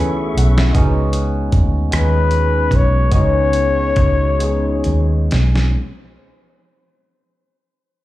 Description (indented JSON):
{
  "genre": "slow six-eight R&B",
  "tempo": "42-52 BPM (dotted quarters)",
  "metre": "6/8",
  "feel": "straight",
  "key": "C# minor",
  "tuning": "A4 = 440 Hz",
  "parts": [
    { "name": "barky tine electric piano", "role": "accompaniment", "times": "0.0-5.8 s", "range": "G#3 to B5", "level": "-22 LUFS", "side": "equal", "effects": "phaser, slapback echo" },
    { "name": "tonewheel organ", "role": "sustained chords", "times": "0.0-0.7 s", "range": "A3 to C#6", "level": "-31 LUFS", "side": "left 2 dB", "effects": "chorus vibrato, slow rotary speaker" },
    { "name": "vintage muted fingered electric bass", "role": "bass", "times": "0.0-5.7 s", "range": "B1 to E2", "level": "-16 LUFS", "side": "equal", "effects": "none" },
    { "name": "dusty soul sampler-style drum kit", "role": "drums", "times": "0.4-5.8 s", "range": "hi-hat, kick drum, rim click, snare drum", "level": "-19 LUFS", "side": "equal", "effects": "none" },
    { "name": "breathy flugelhorn", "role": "melody", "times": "1.9-5.3 s", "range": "B4 to C#5", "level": "-19 LUFS", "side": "left 4 dB", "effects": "slapback echo" }
  ],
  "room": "digital ambience",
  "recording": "live gig heard through the venue's PA, club reverb",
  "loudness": "-13 LUFS",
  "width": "side -16 dB against mid",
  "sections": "0.7-5.8 A section",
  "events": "drum fill 0.0-0.7, 4.4-5.8; tine electric piano fill 0.0-0.7; slowing down 0.7-5.8",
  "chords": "0.0 B9sus4; 0.7 C#9sus4"
}